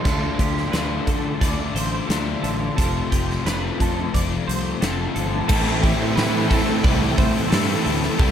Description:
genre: rock, shoegaze and dream pop.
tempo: 88 BPM.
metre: 4/4.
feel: straight.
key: A minor.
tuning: A4 = 440 Hz.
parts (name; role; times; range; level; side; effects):
twelve-string electric guitar; arpeggios; 0.0-8.3 s; G4 to D5; -30 LUFS; right 9 dB; ensemble chorus, slapback echo.
crunchy overdriven guitar; riff; 0.0-8.3 s; F2 to F4; -25 LUFS; left 9 dB; lush chorus.
crunchy overdriven guitar; riff; 0.0-8.3 s; F2 to F4; -28 LUFS; right 8 dB; reverse reverb.
growling fingered electric bass; bass; 0.0-8.3 s; F1 to D3; -26 LUFS; right 1 dB; overdrive.
huge arena drum kit; drums; 0.1-8.3 s; crash cymbal, hi-hat, kick drum, snare drum; -23 LUFS; equal; none.
string machine, cellos; sustained chords; 5.5-8.3 s; A4 to A5; -32 LUFS; equal; none.
crunchy overdriven guitar; riff; 5.5-8.3 s; A2 to E4; -26 LUFS; equal; none.
room: light reverb.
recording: none.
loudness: -19 LUFS.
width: side -9 dB against mid.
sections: 0.0-5.5 A section; 5.5-8.3 B section.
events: none.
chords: 0.1 Dm7; 2.8 Fadd9; 5.5 Am7.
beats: | 0.06 0.74 1.42 2.10 | 2.78 3.46 4.14 4.82 | 5.50 6.17 6.85 7.53 | 8.20.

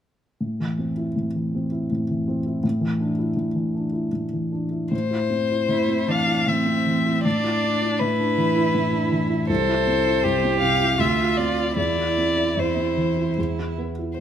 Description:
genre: classical, slow romantic movement for piano quartet.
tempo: 72-84 BPM.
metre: 3/4.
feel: rubato.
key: A minor.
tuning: A4 = 442 Hz.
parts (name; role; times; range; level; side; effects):
dark baby grand piano; accompaniment; 0.4-14.2 s; C2 to F4; -23 LUFS; equal; none.
rich violin; melody; 4.9-14.2 s; B4 to F5; -24 LUFS; left 6 dB; none.
clear cello; second line; 5.7-13.7 s; C4 to A4; -25 LUFS; right 9 dB; none.
room: moderate recital hall reverb, RT60 1.6 s.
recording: close, detailed microphones.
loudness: -20 LUFS.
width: side -9 dB against mid.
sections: 0.4-4.9 A section; 4.9-14.2 B section.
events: none.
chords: 0.4 Am; 2.6 Asus4; 4.9 Am; 7.2 E5/A; 9.5 Am/C; 11.0 Dm7; 11.8 Cadd9/E; 13.4 E5.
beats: | 0.40 1.16 1.90 | 2.64 3.37 4.13 | 4.93 5.71 6.47 | 7.25 8.01 8.75 | 9.49 10.24 10.99 | 11.77 12.57 13.38 | 14.20.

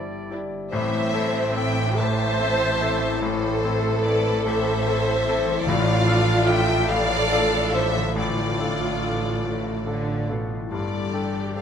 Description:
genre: cinematic, emotional film score for orchestra.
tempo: 48 BPM (dotted quarters).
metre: 6/8.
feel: rubato.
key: A minor.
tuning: A4 = 441 Hz.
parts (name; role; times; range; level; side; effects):
bright concert grand piano; accompaniment; 0.0-11.6 s; G1 to D5; -27 LUFS; left 2 dB; none.
concert harp; arpeggios; 0.0-11.6 s; G2 to D6; -32 LUFS; left 7 dB; none.
rich symphonic double bass section; bass; 0.0-11.6 s; G1 to A1; -29 LUFS; right 3 dB; none.
warm symphonic violin section; melody; 0.3-11.6 s; G4 to A5; -29 LUFS; left 3 dB; none.
warm symphonic viola section; accompaniment; 0.3-11.6 s; C4 to C5; -27 LUFS; right 1 dB; none.
warm symphonic violin section; second line; 0.7-11.6 s; A4 to E5; -28 LUFS; left 1 dB; none.
rich symphonic cello section; bass; 0.7-11.6 s; G2 to D3; -31 LUFS; right 4 dB; none.
timpani; percussion; 5.7-6.9 s; A2; -28 LUFS; equal; none.
room: moderate scoring stage reverb, RT60 1.5 s.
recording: none.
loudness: -20 LUFS.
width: side -8 dB against mid.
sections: 0.7-11.6 A section.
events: none.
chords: 0.0 Cadd9/G (rootless); 0.7 Am; 5.7 Dm/A; 10.7 Gsus2.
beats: | 0.72 1.98 | 3.21 4.45 | 5.66 6.89 | 8.16 9.44 | 10.72.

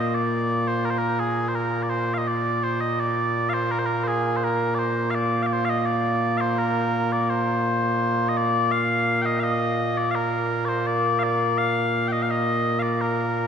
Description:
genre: scottish traditional, Scottish pipe music.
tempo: 84 BPM.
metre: 4/4.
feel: straight.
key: Bb major.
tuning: A4 = 439 Hz.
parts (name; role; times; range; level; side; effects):
mellow small bagpipes; solo; 0.0-13.5 s; Bb2 to G5; -21 LUFS; equal; none.
room: wet concert hall reverb, RT60 2.2 s.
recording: recorded in a church or concert hall.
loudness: -21 LUFS.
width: side -7 dB against mid.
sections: 0.0-13.5 A section.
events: none.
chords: none.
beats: | 0.15 0.86 1.58 2.29 | 3.00 3.72 4.43 5.15 | 5.86 6.58 7.29 8.01 | 8.72 9.43 10.15 10.86 | 11.58 12.29 13.01.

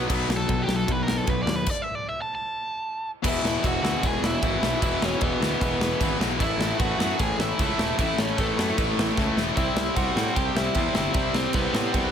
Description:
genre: punk rock.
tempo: 152 BPM.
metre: 4/4.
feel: straight.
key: unclear.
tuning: A4 = 439 Hz.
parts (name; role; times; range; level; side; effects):
overdriven electric guitar; melody; 0.0-12.1 s; A3 to A5; -29 LUFS; right 1 dB; none.
distorted electric guitar; riff; 0.0-12.1 s; E2 to C4; -28 LUFS; left 12 dB; overdrive.
distorted electric guitar; riff; 0.0-12.1 s; E2 to C4; -32 LUFS; right 17 dB; distortion.
heavy high-gain guitar; riff; 0.0-12.1 s; E2 to C4; -33 LUFS; right 1 dB; distortion.
fuzz picked electric bass; bass; 0.0-12.1 s; E1 to A2; -30 LUFS; right 1 dB; overdrive.
big rock drum kit; drums; 0.1-12.0 s; crash cymbal, kick drum, ride cymbal, snare drum; -27 LUFS; equal; none.
room: little or no reverb.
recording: none.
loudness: -22 LUFS.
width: side -8 dB against mid.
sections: 0.0-3.2 A section; 3.2-12.1 B section.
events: overdriven electric guitar solo 0.0-3.2; stop 1.7-3.2; drum fill 9.2-9.6.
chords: 0.0 B5; 1.7 N.C.; 3.2 E5; 6.4 A5; 9.6 C.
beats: | 0.10 0.49 0.88 1.28 | 1.67 2.07 2.46 2.85 | 3.25 3.64 4.04 4.43 | 4.83 5.22 5.61 6.01 | 6.40 6.80 7.20 7.59 | 7.99 8.38 8.78 9.17 | 9.57 9.96 10.36 10.76 | 11.15 11.55 11.95.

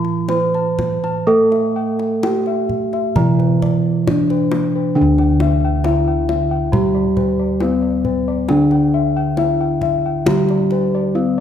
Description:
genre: Javanese gamelan.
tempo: 60-68 BPM.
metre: 4/4.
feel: straight.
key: D slendro.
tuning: A4 = 439 Hz.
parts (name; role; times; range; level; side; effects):
gamelan-type bronze metallophone; melody; 0.0-11.4 s; C4-45c to C5-45c; -20 LUFS; left 2 dB; none.
gamelan-type bronze metallophone; accompaniment; 0.0-11.4 s; D3 to A3+25c; -20 LUFS; right 3 dB; none.
gamelan-type bossed gongs; arpeggios; 0.0-11.4 s; C5-45c to C6-45c; -24 LUFS; left 6 dB; none.
gamelan-type bossed gongs; bass; 0.0-11.4 s; D2 to A4+25c; -21 LUFS; equal; none.
kendang; percussion; 0.0-10.8 s; none; -24 LUFS; left 2 dB; none.
room: moderate recital hall reverb, RT60 1.6 s.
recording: none.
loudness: -14 LUFS.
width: side -9 dB against mid.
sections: 0.0-5.0 A section; 5.0-11.4 B section.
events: none.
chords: none.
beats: 0.29 | 1.27 2.23 3.17 4.08 | 4.97 5.85 6.74 7.62 | 8.50 9.38 10.27 11.15.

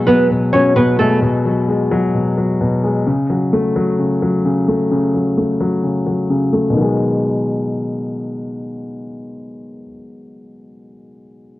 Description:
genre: hip hop.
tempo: 130 BPM.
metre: 4/4.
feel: half-time.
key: G# phrygian.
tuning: A4 = 437 Hz.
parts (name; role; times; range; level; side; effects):
dark grand piano; accompaniment; 0.0-11.6 s; B2 to A3; -16 LUFS; left 1 dB; low-pass filter, cassette tape.
nylon-string guitar; melody; 0.1-1.2 s; A3 to C#5; -14 LUFS; right 1 dB; low-pass filter, cassette tape.
room: light reverb.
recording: home recording on cassette.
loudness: -14 LUFS.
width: side -16 dB against mid.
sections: 0.0-6.8 A section; 6.8-10.5 B section.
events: filter sweep 0.0-6.8.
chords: 0.0 G#m7; 3.1 A6; 6.8 G#m7.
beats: 0.30 0.76 | 1.22 1.68 2.14 2.61 | 3.07 3.53 3.99 4.45 | 4.91 5.38 5.84 6.30 | 6.76 7.22 7.68 8.14 | 8.61 9.07 9.53 9.99.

